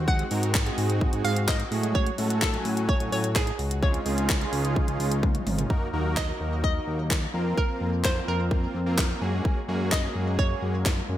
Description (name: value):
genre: dance-pop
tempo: 128 BPM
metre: 4/4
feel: straight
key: unclear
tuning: A4 = 440 Hz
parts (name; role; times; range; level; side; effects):
- hollow square pluck; melody; 0.0-11.1 s; Ab4 to Gb5; -32 LUFS; right 1 dB; chorus, digital delay
- soft supersaw; sustained chords; 0.0-11.2 s; Db3 to Gb4; -35 LUFS; left 1 dB; sidechain pumping
- fat analog bass; bass; 0.0-11.2 s; Ab1 to A2; -28 LUFS; equal; sidechain pumping
- big bright polysynth; accompaniment; 0.1-10.7 s; Gb3 to Ab5; -32 LUFS; right 2 dB; sidechain pumping
- house drum kit; drums; 0.1-11.0 s; handclaps, hi-hat, kick drum, snare drum, toms; -26 LUFS; equal; gated reverb
room: light reverb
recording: bright 1980s-style digital production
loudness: -23 LUFS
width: side -12 dB against mid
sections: 0.0-5.7 A section; 5.7-11.2 B section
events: drum fill 5.2-5.7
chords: 0.0 Ab7; 1.7 Gbmadd9; 3.8 Dbmaj7; 5.7 Ebm; 7.3 Bbsus2/F; 9.2 Gbadd9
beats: | 0.08 0.55 1.01 1.48 | 1.95 2.42 2.89 3.36 | 3.83 4.29 4.76 5.23 | 5.70 6.17 6.64 7.11 | 7.58 8.04 8.51 8.98 | 9.45 9.92 10.39 10.86